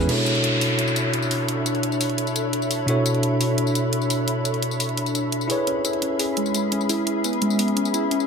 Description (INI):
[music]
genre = liquid drum and bass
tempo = 172 BPM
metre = 4/4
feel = straight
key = B dorian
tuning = A4 = 439 Hz
[part]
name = bell-like tine electric piano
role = accompaniment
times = 0.0-8.3 s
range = B2 to C#5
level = -24 LUFS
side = equal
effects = low-pass filter, tape echo
[part]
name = harp-like synth pluck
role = arpeggios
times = 0.0-0.1, 5.7-8.3 s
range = G#3 to G#4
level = -25 LUFS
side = right 2 dB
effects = chorus, digital delay
[part]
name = glassy FM pad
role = sustained chords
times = 0.5-8.3 s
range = C#4 to B5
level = -26 LUFS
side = left 2 dB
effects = ensemble chorus, built-in reverb
[part]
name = pop drum kit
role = drums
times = 0.1-8.3 s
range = crash cymbal, hi-hat, tambourine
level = -28 LUFS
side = left 1 dB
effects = none
[part]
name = downlifter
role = sound effects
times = 0.1-2.9 s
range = none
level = -26 LUFS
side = left 1 dB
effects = none
[sound]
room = moderate digital room reverb, RT60 1.1 s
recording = none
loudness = -20 LUFS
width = side -6 dB against mid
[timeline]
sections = 0.1-8.3 A section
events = none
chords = 0.1 Bm11; 5.5 C#m7